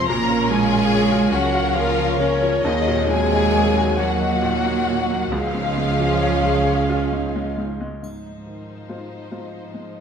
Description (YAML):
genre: cinematic, emotional film score for orchestra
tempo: 45 BPM (dotted quarters)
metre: 6/8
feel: uneven beats, rubato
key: unclear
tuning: A4 = 443 Hz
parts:
  - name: warm studio violin section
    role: melody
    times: 0.0-10.0 s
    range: C5 to Bb5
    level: -28 LUFS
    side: left 4 dB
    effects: none
  - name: clear symphonic violin section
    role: second line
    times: 0.0-10.0 s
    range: Db4 to Bb4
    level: -28 LUFS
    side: left 5 dB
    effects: none
  - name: mellow silver concert flute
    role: second line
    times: 0.0-7.6 s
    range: Db5 to Bb5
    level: -26 LUFS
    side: left 2 dB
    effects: none
  - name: bright baby grand piano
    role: accompaniment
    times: 0.0-10.0 s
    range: Db2 to Db5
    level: -26 LUFS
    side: left 2 dB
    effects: none
  - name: rich studio viola section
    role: accompaniment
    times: 0.0-10.0 s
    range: C3 to Bb4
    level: -27 LUFS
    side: right 1 dB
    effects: none
  - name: dark French horn section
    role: sustained chords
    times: 0.0-7.7 s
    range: Db3 to Db5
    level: -27 LUFS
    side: left 3 dB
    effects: none
  - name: rich studio cello section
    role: bass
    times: 0.0-10.0 s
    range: Ab2 to Bb3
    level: -25 LUFS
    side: right 4 dB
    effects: none
  - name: warm symphonic double bass section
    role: bass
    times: 0.0-7.8 s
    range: Bb1 to Eb2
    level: -24 LUFS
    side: right 4 dB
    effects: none
  - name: triangle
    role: percussion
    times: 8.0-9.7 s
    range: none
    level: -55 LUFS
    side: left 3 dB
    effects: none
room: moderate concert hall reverb, RT60 1.9 s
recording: none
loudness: -17 LUFS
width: side -7 dB against mid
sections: 0.0-8.0 A section; 8.0-10.0 B section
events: none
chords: 0.1 Bbm; 2.6 Ebm7; 5.3 Db; 8.0 Ab6